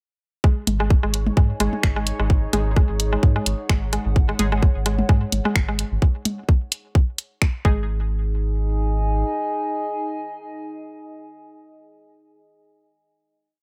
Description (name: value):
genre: minimal techno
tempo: 129 BPM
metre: 4/4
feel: swing 55% on 16ths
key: unclear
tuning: A4 = 440 Hz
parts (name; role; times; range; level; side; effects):
- mallet-like synth pluck; riff; 0.4-8.1 s; G#3; -31 LUFS; equal; chorus, sidechain pumping, tape echo
- electronic kick drum; drums; 0.4-7.8 s; none; -19 LUFS; equal; none
- bubbling stepped-filter texture; texture; 1.1-6.0 s; C#5; -43 LUFS; equal; chorus, built-in reverb, sidechain pumping
- warbly tape-like pad; texture; 1.1-12.4 s; D#4 to G#5; -33 LUFS; equal; chorus, built-in reverb, sidechain pumping
- round analog bass; bass; 0.7-9.2 s; G#1 to G#2; -26 LUFS; equal; sidechain pumping
- garage drum kit; drums; 0.7-7.5 s; finger snaps, hi-hat; -26 LUFS; equal; none
- electronic toms; percussion; 0.7-6.4 s; none; -28 LUFS; equal; delay
- wavetable chord stab; stabs; 2.5-4.5, 7.6-12.1 s; G#3 to G#4; -33 LUFS; equal; delay
room: light reverb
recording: none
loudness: -21 LUFS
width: mono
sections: 0.4-7.9 groove; 7.9-11.6 final chord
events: none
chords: 0.4 G#5